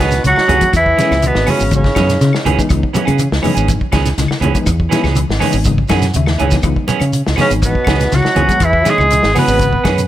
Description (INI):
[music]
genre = afrobeat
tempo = 122 BPM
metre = 4/4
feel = straight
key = C# minor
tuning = A4 = 439 Hz
[part]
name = clear tenor saxophone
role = melody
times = 0.0-2.4, 7.4-10.1 s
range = B3 to B4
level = -15 LUFS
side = equal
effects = none
[part]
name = clear trombone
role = second line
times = 0.0-2.4, 7.4-10.1 s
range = B2 to B3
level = -21 LUFS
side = right 4 dB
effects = none
[part]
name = clean electric guitar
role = arpeggios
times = 0.0-10.0 s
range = C#3 to F#3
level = -22 LUFS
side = left 6 dB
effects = ensemble chorus
[part]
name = clean electric guitar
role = stabs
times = 0.0-10.0 s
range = E3 to G#4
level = -21 LUFS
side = right 8 dB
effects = none
[part]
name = fingered electric bass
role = bass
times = 0.0-10.0 s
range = G#1 to C#3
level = -16 LUFS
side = equal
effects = none
[part]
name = warm soul drum kit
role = drums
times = 0.0-10.1 s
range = hi-hat, kick drum, snare drum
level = -19 LUFS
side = equal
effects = none
[part]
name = congas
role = percussion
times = 0.0-10.0 s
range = none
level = -22 LUFS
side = right 1 dB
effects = none
[part]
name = shekere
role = percussion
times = 0.1-10.1 s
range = none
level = -22 LUFS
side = right 4 dB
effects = none
[part]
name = claves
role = percussion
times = 0.4-10.0 s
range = none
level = -29 LUFS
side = left 8 dB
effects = none
[part]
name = reed electric piano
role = accompaniment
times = 0.5-9.7 s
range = E3 to F#5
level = -22 LUFS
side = left 4 dB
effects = fast tremolo
[sound]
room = small room ambience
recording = none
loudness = -11 LUFS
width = side -13 dB against mid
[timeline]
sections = 0.0-10.1 A section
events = reed electric piano fill 5.7-6.6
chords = 0.0 C#m7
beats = 0.24 | 0.73 1.22 1.71 2.21 | 2.70 3.19 3.69 4.18 | 4.67 5.16 5.66 6.15 | 6.64 7.13 7.63 8.12 | 8.62 9.11 9.60